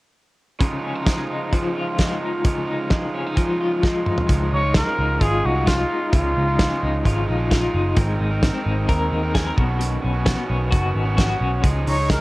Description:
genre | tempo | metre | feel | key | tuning
jangly indie pop | 131 BPM | 4/4 | straight | Db major | A4 = 440 Hz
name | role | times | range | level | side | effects
crunchy overdriven guitar | accompaniment | 0.6-12.2 s | Cb3 to Bb4 | -27 LUFS | right 3 dB | none
electric guitar through a small old amp | arpeggios | 0.6-12.2 s | Cb3 to Bb4 | -25 LUFS | left 2 dB | tremolo
loose indie drum kit | drums | 0.6-12.2 s | hi-hat, kick drum, snare drum, toms | -20 LUFS | equal | none
vintage muted picked electric bass | bass | 4.3-12.2 s | Gb1 to Eb2 | -22 LUFS | equal | none
breathy trumpet | melody | 4.5-7.0, 11.9-12.2 s | F4 to Db5 | -23 LUFS | equal | none
room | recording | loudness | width
moderate studio reverb, RT60 0.6 s | worn, warbling old tape, cassette tape, warbly pitch drift | -18 LUFS | side -20 dB against mid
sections
0.6-4.3 A section; 4.3-12.2 B section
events
drum fill 3.8-4.3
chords
0.6 Dbadd9; 8.0 Abadd9; 9.6 Cbadd9; 11.6 Dbadd9

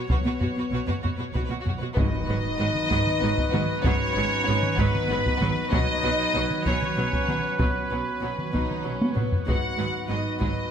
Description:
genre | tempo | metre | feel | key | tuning
cinematic, epic orchestral film score | 64 BPM (dotted quarters) | 6/8 | straight | G# minor | A4 = 440 Hz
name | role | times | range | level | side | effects
rich symphonic violin section | melody | 0.0-10.7 s | B4 to F#5 | -29 LUFS | left 2 dB | none
warm symphonic violin section | second line | 0.0-10.5 s | B3 to B4 | -36 LUFS | left 3 dB | none
mellow French horn section | sustained chords | 0.0-10.7 s | B3 to F#4 | -34 LUFS | left 3 dB | none
clear symphonic viola section | accompaniment | 0.1-10.5 s | F#3 to F#4 | -35 LUFS | right 2 dB | none
clear symphonic double bass section | bass | 0.1-10.5 s | G#1 to B1 | -32 LUFS | right 3 dB | none
rich symphonic cello section | bass | 0.1-10.5 s | G#2 to B2 | -32 LUFS | right 2 dB | none
solo taiko drums | drums | 0.1-10.7 s | none | -28 LUFS | equal | none
pipe organ, stopped flute | sustained chords | 2.0-10.7 s | B3 to D#5 | -36 LUFS | right 1 dB | none
warm trombone section | sustained chords | 2.0-10.7 s | F#3 to D#4 | -35 LUFS | right 4 dB | none
warm trumpet | stabs | 2.0-10.7 s | B4 | -32 LUFS | right 1 dB | none
timpani | percussion | 2.0-2.9 s | G#2 | -33 LUFS | equal | none
impact | sound effects | 2.1-3.8 s | none | -37 LUFS | equal | none
room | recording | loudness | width
moderate scoring stage reverb, RT60 1.8 s | none | -22 LUFS | side -8 dB against mid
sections
0.0-2.0 A section; 2.0-10.7 B section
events
impact 2.0-3.8; drum fill 9.0-9.5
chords
0.0 Bsus2; 2.0 G#m7; 5.7 Bsus2; 9.5 G#m7

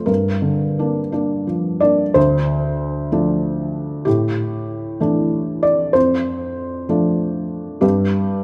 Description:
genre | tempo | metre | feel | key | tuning
neoclassical minimalist piano | 64 BPM (dotted quarters) | 6/8 | rubato | D minor | A4 = 439 Hz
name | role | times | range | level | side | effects
felt-muted upright piano | solo | 0.0-8.4 s | D2 to D5 | -19 LUFS | equal | none
room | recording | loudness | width
moderate scoring stage reverb, RT60 1.9 s | close, detailed microphones | -19 LUFS | mono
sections
0.0-2.2 A section; 2.2-8.4 B section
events
none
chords
0.1 Gm7; 2.2 Dm7; 4.1 A7sus4; 6.0 F6; 7.8 N.C.

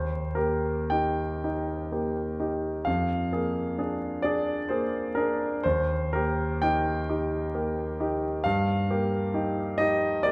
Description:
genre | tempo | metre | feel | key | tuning
classical, romantic nocturne for solo piano | 35-45 BPM (dotted quarters) | 12/8 | rubato | Eb major | A4 = 441 Hz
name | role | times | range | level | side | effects
clear concert grand piano | solo | 0.0-10.3 s | Eb2 to G5 | -28 LUFS | equal | none
room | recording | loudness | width
wet recital hall reverb, RT60 1.7 s | dark, warm production, vinyl crackle | -28 LUFS | mono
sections
0.0-10.3 A section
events
none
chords
0.0 Eb; 2.9 Bb7/F; 5.6 Eb; 8.4 Eb/G

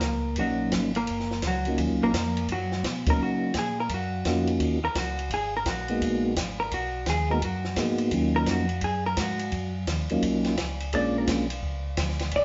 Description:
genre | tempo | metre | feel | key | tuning
soul jazz organ trio | 170 BPM | 4/4 | swing 64% on 8ths | Eb minor | A4 = 440 Hz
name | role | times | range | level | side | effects
vintage hollow-body jazz guitar | accompaniment | 0.0-12.4 s | Gb3 to D5 | -31 LUFS | equal | none
mellow tonewheel organ | bass | 0.0-12.4 s | Gb1 to Db3 | -34 LUFS | equal | chorus vibrato, slow rotary speaker
compact cocktail drum kit | drums | 0.0-12.4 s | hi-hat, kick drum, ride cymbal, snare drum | -34 LUFS | equal | none
percussive tonewheel organ | melody | 0.4-11.5 s | Gb3 to Gb4 | -28 LUFS | equal | slow rotary speaker, chorus vibrato
room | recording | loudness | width
moderate stone room reverb, RT60 1.1 s | band playing live in one room, nothing above 7.7 kHz | -27 LUFS | mono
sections
0.0-12.4 A section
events
hollow-body jazz guitar solo 0.0-12.4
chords
0.0 Ebm9; 5.3 Abm9; 8.1 Ebm9; 10.9 Bb7#9

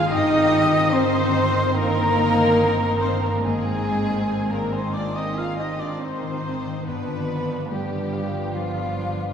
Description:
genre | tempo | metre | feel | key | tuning
cinematic, emotional film score for orchestra | 71 BPM | 4/4 | rubato | C minor | A4 = 440 Hz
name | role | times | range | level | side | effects
muted chamber violin section | melody | 0.0-9.3 s | B3 to Ab4 | -33 LUFS | left 3 dB | none
mellow silver concert flute | second line | 0.0-9.3 s | F5 to F6 | -28 LUFS | equal | none
muted chamber violin section | second line | 0.0-9.3 s | F4 to F5 | -26 LUFS | left 1 dB | none
muted studio viola section | accompaniment | 0.0-9.3 s | Eb3 to D4 | -32 LUFS | right 2 dB | none
dark French horn section | sustained chords | 0.0-9.3 s | F3 to F4 | -26 LUFS | left 2 dB | none
concert harp | arpeggios | 0.0-9.3 s | G2 to C6 | -32 LUFS | left 3 dB | none
muted studio cello section | bass | 0.0-9.3 s | F3 to F4 | -28 LUFS | right 2 dB | none
muted studio double bass section | bass | 0.0-9.3 s | G1 to Ab1 | -29 LUFS | right 3 dB | none
room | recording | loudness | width
wet cathedral reverb, RT60 5.5 s | recorded in a church or concert hall | -20 LUFS | side -8 dB against mid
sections
0.0-9.3 A section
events
none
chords
0.1 Cm7/G; 3.4 Ab; 6.9 G7

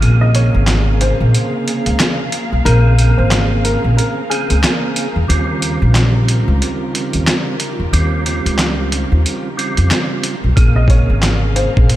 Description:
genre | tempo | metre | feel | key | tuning
hip hop, boom-bap hip-hop | 91 BPM | 4/4 | swing 60% on 16ths | Bb dorian | A4 = 442 Hz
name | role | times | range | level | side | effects
percussive tonewheel organ | accompaniment | 0.0-12.0 s | C3 to Ab4 | -21 LUFS | right 3 dB | chorus vibrato, fast rotary speaker, cassette tape, high-pass filter, low-pass filter
dark studio string section | sustained chords | 0.0-12.0 s | Db3 to F5 | -26 LUFS | left 1 dB | high-pass filter, low-pass filter
upright bass | bass | 0.0-11.9 s | Ab1 to F2 | -13 LUFS | equal | none
trip hop sampler-style drum kit | drums | 0.0-12.0 s | handclaps, hi-hat, kick drum, snare drum | -18 LUFS | equal | overdrive
dark upright piano | melody | 0.2-5.2, 10.8-12.0 s | Ab4 to Eb5 | -24 LUFS | left 2 dB | high-pass filter, low-pass filter, ping-pong delay
room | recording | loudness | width
light reverb, small room ambience | none | -12 LUFS | side -14 dB against mid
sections
0.0-12.0 A section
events
break 0.0-10.6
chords
0.0 Bbm9; 5.3 Eb13; 10.6 Bbm9

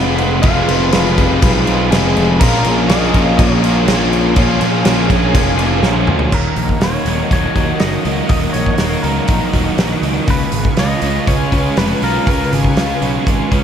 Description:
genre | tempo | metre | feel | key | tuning
rock, shoegaze and dream pop | 122 BPM | 4/4 | straight | Eb minor | A4 = 441 Hz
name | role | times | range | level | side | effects
clean electric guitar | melody | 0.0-13.6 s | Ab4 to Gb5 | -23 LUFS | left 2 dB | lush chorus, tape echo
string machine, violas | sustained chords | 0.0-13.6 s | Ab4 to Db6 | -24 LUFS | equal | ensemble chorus
biting overdriven guitar | riff | 0.0-6.3 s | F2 to F4 | -21 LUFS | equal | none
crunchy overdriven guitar | riff | 0.0-13.6 s | Eb2 to F4 | -19 LUFS | right 6 dB | reverse reverb
overdriven semi-hollow guitar | riff | 0.0-13.6 s | Eb2 to Ab4 | -20 LUFS | left 6 dB | analog chorus
fuzz picked electric bass | bass | 0.0-13.6 s | Eb1 to Eb2 | -18 LUFS | equal | overdrive
loose indie drum kit | drums | 0.2-13.6 s | crash cymbal, hi-hat, kick drum, snare drum, toms | -17 LUFS | equal | none
room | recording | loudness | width
wet lush hall reverb, RT60 2.0 s | dreamy mix soaked in reverb | -12 LUFS | side -8 dB against mid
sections
0.0-6.3 A section; 6.3-13.6 B section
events
drum fill 5.8-6.3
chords
0.0 Fdim; 2.4 Bbm7; 6.3 Ebm7; 10.3 Db7

